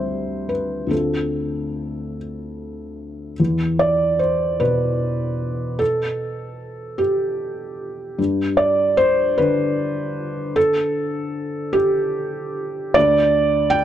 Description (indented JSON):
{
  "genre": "neoclassical minimalist piano",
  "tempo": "50 BPM (dotted quarters)",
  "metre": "6/8",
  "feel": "rubato",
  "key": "unclear",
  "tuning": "A4 = 441 Hz",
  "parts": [
    { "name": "felt-muted upright piano", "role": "solo", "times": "0.0-13.8 s", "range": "D2 to G5", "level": "-19 LUFS", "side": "equal", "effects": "none" }
  ],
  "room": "light reverb",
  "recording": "dark, warm production",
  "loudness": "-18 LUFS",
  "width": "side -10 dB against mid",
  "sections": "0.0-3.4 A section; 3.4-13.8 B section",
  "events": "none",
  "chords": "0.0 C/D; 0.9 Dm7; 3.4 Em; 8.2 G; 12.9 N.C."
}